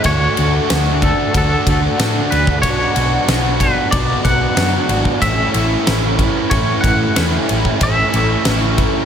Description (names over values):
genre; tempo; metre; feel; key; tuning
rock, shoegaze and dream pop; 93 BPM; 4/4; straight; A major; A4 = 440 Hz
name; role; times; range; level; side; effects
twangy electric guitar; melody; 0.0-9.1 s; A4 to F#5; -21 LUFS; equal; tremolo, digital delay
biting overdriven guitar; riff; 0.0-9.1 s; A2 to F#4; -20 LUFS; right 10 dB; reverse reverb
raw garage guitar; riff; 0.0-9.1 s; A2 to F#4; -21 LUFS; left 9 dB; overdrive, analog chorus
huge arena drum kit; drums; 0.0-8.9 s; kick drum, ride cymbal, snare drum; -19 LUFS; equal; none
hollow-body short-scale fingered electric bass; bass; 0.1-8.9 s; G#1 to A2; -19 LUFS; equal; none
room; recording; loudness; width
light reverb, studio ambience; none; -13 LUFS; side -8 dB against mid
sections
0.0-9.1 A section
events
none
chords
0.1 D; 2.6 Bm; 5.2 A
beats
| 0.05 0.70 1.34 1.99 | 2.64 3.28 3.93 4.58 | 5.22 5.87 6.51 7.16 | 7.80 8.45